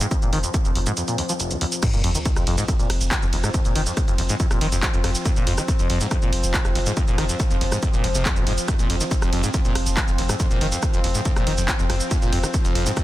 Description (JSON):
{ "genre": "driving peak-time techno", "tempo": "140 BPM", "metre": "4/4", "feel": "straight", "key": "unclear", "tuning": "A4 = 440 Hz", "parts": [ { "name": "acid bass, saw", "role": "riff", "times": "0.0-13.0 s", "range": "F1 to F3", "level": "-26 LUFS", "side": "equal", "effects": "lush chorus, sidechain pumping, digital delay" }, { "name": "analog drone", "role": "drone", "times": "0.0-13.0 s", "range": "F3 to C4", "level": "-29 LUFS", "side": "left 1 dB", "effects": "chorus, sidechain pumping" }, { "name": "punchy analog drum machine", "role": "drums", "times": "0.0-13.0 s", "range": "crash cymbal, handclaps, hi-hat, ride cymbal, rim click, shaker", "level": "-26 LUFS", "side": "right 1 dB", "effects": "studio reverb, soft clipping on snare" }, { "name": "electronic kick drum", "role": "drums", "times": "0.1-13.0 s", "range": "none", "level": "-22 LUFS", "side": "equal", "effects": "studio reverb" }, { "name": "warm sub bass", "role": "bass", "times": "0.2-12.9 s", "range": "F1", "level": "-25 LUFS", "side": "equal", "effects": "tube saturation, sidechain pumping, low-pass filter" }, { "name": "sub drop", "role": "sound effects", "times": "1.8-3.5 s", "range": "none", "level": "-31 LUFS", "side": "equal", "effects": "none" } ], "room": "digital ambience", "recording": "dense, heavily limited modern master", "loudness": "-19 LUFS", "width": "side -15 dB against mid", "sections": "0.0-1.8 A section; 1.8-13.0 B section", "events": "kick drops out 1.0-1.8; drop 1.8-13.0; impact 1.8-3.5", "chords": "0.0 F5" }